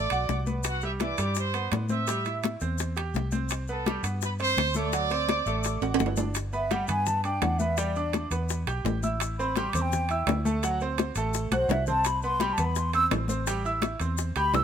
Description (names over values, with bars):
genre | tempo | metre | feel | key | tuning
latin, salsa | 168 BPM | 4/4 | straight | G major | A4 = 440 Hz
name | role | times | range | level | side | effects
bright trumpet section | melody | 0.0-6.0 s | F#4 to E6 | -29 LUFS | right 3 dB | none
bright concert grand piano | accompaniment | 0.0-14.6 s | E3 to G6 | -32 LUFS | right 3 dB | none
vintage muted fingered electric bass | bass | 0.0-14.6 s | G1 to A2 | -30 LUFS | equal | none
bongos | percussion | 0.1-14.6 s | none | -33 LUFS | left 10 dB | none
congas | percussion | 0.1-14.6 s | none | -33 LUFS | left 4 dB | none
maracas | percussion | 0.1-14.6 s | none | -39 LUFS | left 7 dB | none
timbales | percussion | 0.1-14.6 s | none | -32 LUFS | right 8 dB | none
mellow hollow concert flute | melody | 6.5-14.6 s | C5 to E6 | -27 LUFS | left 1 dB | none
room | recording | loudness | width
light reverb | minimal, uncompressed stereo recording | -25 LUFS | side -8 dB against mid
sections
0.0-6.4 A section; 6.4-14.6 B section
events
drum fill 5.8-6.4, 11.5-12.1; flute solo 6.4-14.6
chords
0.0 D7; 0.6 Cmaj7; 2.1 Am7; 3.5 Csus2; 4.9 D7; 6.4 G6; 7.8 Em7; 9.2 Am7; 10.6 D7; 12.1 Cmaj7; 13.5 Am7